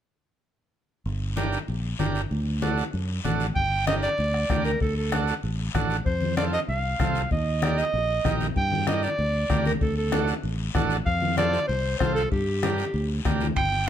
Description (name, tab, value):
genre	latin, cumbia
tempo	192 BPM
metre	4/4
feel	straight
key	G minor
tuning	A4 = 439 Hz
part	fingered electric bass	bass	1.1-13.9 s	G1 to G2	-27 LUFS	equal	none
part	congas	percussion	1.1-13.7 s	none	-31 LUFS	left 3 dB	none
part	guiro	percussion	1.1-13.9 s	none	-39 LUFS	left 8 dB	none
part	combo organ	accompaniment	1.4-13.5 s	C4 to Bb4	-30 LUFS	right 5 dB	none
part	clear clarinet	melody	3.6-13.9 s	G4 to G5	-26 LUFS	right 1 dB	none
part	bombo	percussion	3.6-13.7 s	none	-29 LUFS	left 2 dB	none
part	timbales	percussion	13.6-13.7 s	none	-34 LUFS	right 6 dB	none
room	light reverb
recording	none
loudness	-23 LUFS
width	side -10 dB against mid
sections	1.1-3.6 A section; 3.6-13.6 B section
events	none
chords	1.1 Gm; 2.3 D; 3.6 Gm; 4.8 D; 6.1 F; 7.3 Eb; 8.6 Gm; 9.8 D; 11.1 F; 12.3 Gm